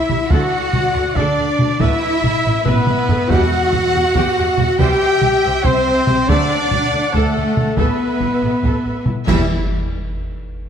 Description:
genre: cinematic, epic orchestral film score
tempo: 281 BPM (eighths)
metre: 7/8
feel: straight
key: E minor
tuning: A4 = 438 Hz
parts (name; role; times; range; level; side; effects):
- warm symphonic violin section; melody; 0.0-9.5 s; A4 to G5; -29 LUFS; left 3 dB; none
- warm symphonic violin section; second line; 0.0-9.5 s; A4 to G5; -25 LUFS; left 2 dB; none
- rich symphonic viola section; accompaniment; 0.0-9.5 s; G3 to F#5; -26 LUFS; right 1 dB; none
- mellow French horn section; sustained chords; 0.0-9.5 s; A3 to G4; -20 LUFS; left 3 dB; none
- warm trumpet; stabs; 0.0-9.5 s; E4 to G5; -23 LUFS; right 2 dB; none
- warm symphonic cello section; bass; 0.0-9.5 s; E3 to G4; -23 LUFS; right 2 dB; none
- dark studio double bass section; bass; 0.1-9.5 s; A1 to E2; -22 LUFS; right 3 dB; none
- taiko ensemble; drums; 0.1-10.1 s; none; -20 LUFS; equal; none
- warm trombone section; sustained chords; 0.3-9.5 s; B2 to A3; -31 LUFS; right 3 dB; none
- timpani; percussion; 3.3-3.9, 9.3-9.5 s; E2; -24 LUFS; equal; none
- clash cymbals and concert bass drum; percussion; 9.3-10.1 s; none; -23 LUFS; equal; none
room: moderate scoring stage reverb, RT60 2.0 s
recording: dark, warm production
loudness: -14 LUFS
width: side -8 dB against mid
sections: 0.0-9.3 A section; 9.3-10.7 B section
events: drum fill 2.7-3.3; band accent 9.3-9.7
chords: 0.3 D; 1.8 Asus2; 3.3 Emadd9; 4.8 C; 6.3 D; 7.8 Asus2; 9.3 Em

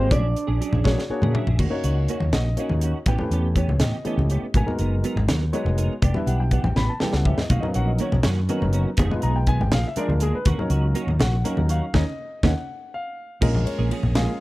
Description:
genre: electric jazz fusion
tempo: 81 BPM (dotted quarters)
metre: 6/8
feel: straight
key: Eb minor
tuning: A4 = 441 Hz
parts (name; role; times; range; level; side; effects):
- flamenco guitar; melody; 0.0-1.1 s; C5 to D5; -31 LUFS; left 1 dB; tape echo
- mellow trombone; second line; 0.0-1.1 s; D4; -30 LUFS; right 6 dB; none
- dark concert grand piano; accompaniment; 0.0-14.4 s; F#3 to B5; -27 LUFS; left 1 dB; none
- clean electric guitar; stabs; 0.0-14.3 s; D#3 to Bb4; -31 LUFS; right 5 dB; ensemble chorus
- fretless electric bass; bass; 0.0-14.3 s; E1 to Bb2; -22 LUFS; equal; none
- crisp fusion drum kit; drums; 0.1-14.3 s; crash cymbal, hi-hat, kick drum, ride cymbal, snare drum, toms; -24 LUFS; equal; none
- congas; percussion; 0.1-14.3 s; none; -28 LUFS; left 1 dB; none
room: studio reverb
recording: dry, close 1970s-style studio recording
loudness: -20 LUFS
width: side -18 dB against mid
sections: 0.0-1.6 A section; 1.6-13.4 B section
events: drum fill 0.8-1.6, 6.8-7.5, 12.7-13.4; grand piano fill 0.8-1.6; band accent 11.9-13.4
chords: 0.1 Bb7alt; 1.6 Ebm7; 3.1 A9; 4.5 Abm9; 6.0 Em7; 6.8 A9; 7.5 Bmaj9; 9.0 Fm7b5; 9.7 Bb7; 10.5 Ebm7; 13.4 Bbm7

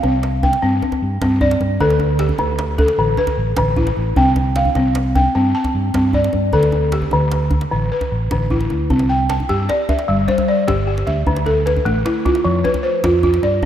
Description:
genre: west african traditional, West African string and xylophone music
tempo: 102 BPM (dotted quarters)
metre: 12/8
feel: straight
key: C major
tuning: A4 = 441 Hz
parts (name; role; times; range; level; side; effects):
- balafon; arpeggios; 0.0-13.7 s; D3 to A5; -16 LUFS; equal; none
- fingered electric bass; bass; 0.0-13.7 s; G1 to G2; -20 LUFS; equal; none
- djembe; percussion; 0.0-13.7 s; none; -23 LUFS; right 1 dB; none
room: wet lush hall reverb, RT60 2.5 s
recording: rough home demo mix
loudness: -14 LUFS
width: side -10 dB against mid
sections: 0.0-8.9 A section; 8.9-13.7 B section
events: none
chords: 0.0 C5; 1.8 D5; 4.2 C5; 6.5 D5; 8.9 C; 10.1 G5; 11.3 Dm; 12.4 F5

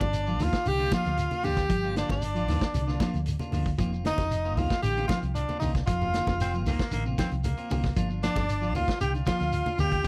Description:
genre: afrobeat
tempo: 115 BPM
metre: 4/4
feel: straight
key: G minor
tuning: A4 = 444 Hz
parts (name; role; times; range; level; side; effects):
- clear tenor saxophone; melody; 0.0-10.1 s; D4 to G4; -33 LUFS; equal; tape echo
- breathy trumpet; second line; 0.0-10.1 s; D5 to G5; -40 LUFS; equal; tape echo
- mellow electric guitar; arpeggios; 0.0-10.1 s; C3 to F3; -37 LUFS; equal; spring reverb
- clean electric guitar; stabs; 0.0-9.9 s; Eb3 to F4; -40 LUFS; equal; none
- hollow-body short-scale fingered electric bass; bass; 0.0-10.1 s; F1 to D2; -32 LUFS; equal; none
- vintage drum kit; drums; 0.0-10.1 s; hi-hat, kick drum, snare drum; -34 LUFS; equal; none
- congas; percussion; 0.0-9.9 s; none; -36 LUFS; equal; none
- shekere; percussion; 0.0-10.1 s; none; -39 LUFS; equal; none
- growling baritone saxophone; second line; 6.4-8.1 s; Bb3 to C4; -39 LUFS; equal; none
room: small room ambience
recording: dry, close 1970s-style studio recording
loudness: -28 LUFS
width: mono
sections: 0.0-10.1 A section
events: drum fill 7.4-8.0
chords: 0.0 Gm7; 3.8 F7sus4; 8.0 Gm7

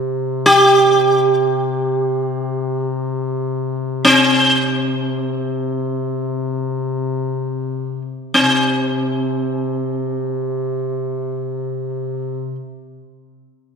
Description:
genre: caucasian folk, Caucasian lament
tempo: free time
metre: none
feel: none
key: unclear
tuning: A4 = 440 Hz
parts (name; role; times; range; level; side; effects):
- mellow duduk; drone; 0.0-12.6 s; C3; -22 LUFS; left 2 dB; none
- sitar; melody; 0.5-12.5 s; C4 to G4; -15 LUFS; right 1 dB; none
room: wet scoring stage reverb, RT60 2.2 s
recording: recorded in a church or concert hall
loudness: -16 LUFS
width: side -6 dB against mid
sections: 0.0-8.4 A section; 8.4-13.8 B section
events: slowing down 0.0-8.4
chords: none

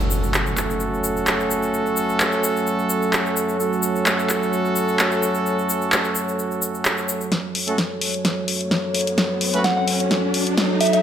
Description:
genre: bass house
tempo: 129 BPM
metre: 4/4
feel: swing 55% on 16ths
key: F# minor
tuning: A4 = 439 Hz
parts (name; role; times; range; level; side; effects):
- dark analog pad; sustained chords; 0.0-11.0 s; F#3 to C#5; -24 LUFS; equal; chorus
- clear horn section; stabs; 0.0-9.6 s; A3 to B4; -23 LUFS; right 2 dB; low-pass filter, digital delay
- cabasa; percussion; 0.0-7.3 s; none; -28 LUFS; left 4 dB; none
- impact and riser; sound effects; 0.0-1.7, 8.3-11.0 s; none; -28 LUFS; equal; none
- house drum kit; drums; 0.3-11.0 s; handclaps, hi-hat, snare drum; -22 LUFS; equal; studio reverb
- soft synth bell; melody; 9.6-11.0 s; E5 to F#5; -22 LUFS; right 1 dB; chorus, digital delay
room: moderate lush hall reverb, RT60 2.1 s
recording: high-pass filter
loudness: -18 LUFS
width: side -9 dB against mid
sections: 0.0-7.3 A section; 7.3-11.0 B section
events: impact 0.0-1.7; build-up 7.3-11.0; drum fill 7.3-11.0; filter sweep on horn section 7.3-11.0; filter sweep 7.3-11.0; riser 8.3-11.0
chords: 0.0 F#m

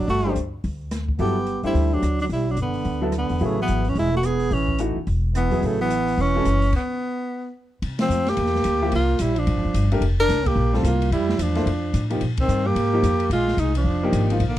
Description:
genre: modal jazz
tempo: 218 BPM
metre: 4/4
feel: swing 61% on 8ths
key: C mixolydian from 7.8 s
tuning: A4 = 442 Hz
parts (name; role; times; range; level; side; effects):
- warm tenor saxophone; melody; 0.0-14.6 s; A3 to Bb4; -24 LUFS; left 1 dB; plate reverb
- clear trombone; second line; 0.0-14.6 s; C#3 to D4; -27 LUFS; right 6 dB; none
- upright bass; bass; 0.0-14.6 s; E1 to C3; -23 LUFS; equal; none
- open jazz drum kit; drums; 0.1-14.6 s; crash cymbal, hi-hat, kick drum, ride cymbal, rim click, snare drum; -31 LUFS; left 1 dB; none
- clear upright piano; accompaniment; 0.3-6.4, 8.8-14.4 s; E3 to C5; -26 LUFS; left 2 dB; none
room: light reverb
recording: dark, warm production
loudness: -19 LUFS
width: side -13 dB against mid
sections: 0.0-7.8 A section; 7.8-14.6 B section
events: stop 6.7-7.8; band accent 8.0, 10.4, 12.3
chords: 0.0 Gmaj9; 3.4 Amaj9; 6.7 N.C.; 7.8 C9sus4; 12.2 Bb7sus4

